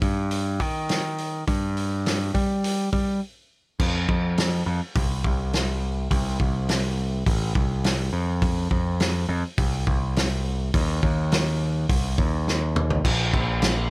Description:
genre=quiet-loud alternative rock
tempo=104 BPM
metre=4/4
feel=straight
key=unclear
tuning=A4 = 441 Hz
part: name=growling picked electric bass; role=bass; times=0.0-13.9 s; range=A1 to G3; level=-24 LUFS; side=equal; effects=overdrive
part: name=loose indie drum kit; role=drums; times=0.0-13.8 s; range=crash cymbal, hi-hat, kick drum, snare drum, toms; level=-25 LUFS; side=equal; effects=none
room=little or no reverb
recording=none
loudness=-21 LUFS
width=side -28 dB against mid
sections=0.0-3.8 A section; 3.8-13.0 B section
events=break 3.2-3.8; drum fill 12.5-13.0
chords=none

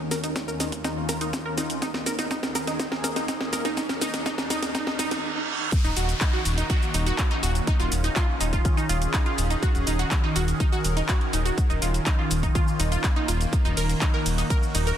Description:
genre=progressive house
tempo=123 BPM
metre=4/4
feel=straight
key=Eb minor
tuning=A4 = 440 Hz
part: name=evolving wavetable pad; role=sustained chords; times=0.0-15.0 s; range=Eb2 to Bb4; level=-31 LUFS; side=equal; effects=phaser, built-in reverb, sidechain pumping
part: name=riser, reverse cymbal and downlifter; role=sound effects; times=0.5-9.6 s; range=none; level=-34 LUFS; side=right 2 dB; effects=none
part: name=wide unison pluck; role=arpeggios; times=0.1-14.9 s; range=Eb4 to Bb4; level=-29 LUFS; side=right 1 dB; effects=phaser, sidechain pumping, digital delay
part: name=house drum kit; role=drums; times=0.1-15.0 s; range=handclaps, hi-hat, ride cymbal, shaker, snare drum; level=-29 LUFS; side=equal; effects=overdrive
part: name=electronic kick drum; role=drums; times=0.4-14.6 s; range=none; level=-24 LUFS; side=equal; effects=high-pass filter on kick, high-pass filter on room
part: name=round analog bass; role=bass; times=5.8-14.9 s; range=Eb1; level=-26 LUFS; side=equal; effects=tube saturation, sidechain pumping
room=light reverb, digital ambience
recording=dense, heavily limited modern master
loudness=-22 LUFS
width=side -10 dB against mid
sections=0.0-5.7 A section; 5.7-15.0 B section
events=build-up 0.0-5.7; drum fill 0.0-5.2; filter sweep on synth pluck 0.0-5.7; filter sweep on ambient pad 0.0-5.7; reverse cymbal 4.7-5.7; drop 5.7-15.0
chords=0.0 Dbadd9/Eb; 1.8 Ebsus4; 3.8 Bbm/Eb; 5.7 Ebm7; 7.7 Dbadd9/Eb; 9.6 Gb6/Eb; 11.6 Bbm/Eb; 13.5 Ebm7

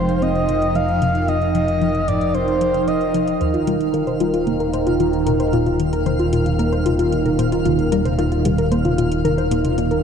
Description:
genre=ambient, sequencer-driven space music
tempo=113 BPM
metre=4/4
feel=straight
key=unclear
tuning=A4 = 440 Hz
part: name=breathy flute-like synth lead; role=melody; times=0.0-3.4 s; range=C5 to F5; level=-21 LUFS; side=equal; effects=chorus, analog delay
part: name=sweeping resonant pad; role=sustained chords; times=0.0-10.0 s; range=Eb3 to G5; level=-21 LUFS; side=right 2 dB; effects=chorus
part: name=tight sequenced synth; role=riff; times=0.0-9.9 s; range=Eb2 to C4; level=-24 LUFS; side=left 2 dB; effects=chorus, analog delay
part: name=fat analog bass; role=bass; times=0.0-10.0 s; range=Eb1 to F1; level=-24 LUFS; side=equal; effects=tube saturation
part: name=twinkling granular texture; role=texture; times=0.0-10.0 s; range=F5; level=-33 LUFS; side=left 1 dB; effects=built-in reverb, lush chorus
part: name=soft vintage rhythm box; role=percussion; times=0.1-10.0 s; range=hi-hat, toms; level=-30 LUFS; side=left 2 dB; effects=analog delay
part: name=soft round pluck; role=arpeggios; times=3.4-10.0 s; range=F4 to C5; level=-22 LUFS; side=left 3 dB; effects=chorus, auto-pan, analog delay
room=wet lush hall reverb, RT60 2.8 s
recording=dreamy mix soaked in reverb, cassette tape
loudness=-16 LUFS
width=side -7 dB against mid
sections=0.0-10.0 A section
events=fade-in on synth texture 0.0-10.0; fade-in on drum 0.0-10.0; filter sweep on synth arpeggio sound 0.0-10.0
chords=0.0 F7(no3); 3.4 Ebadd9

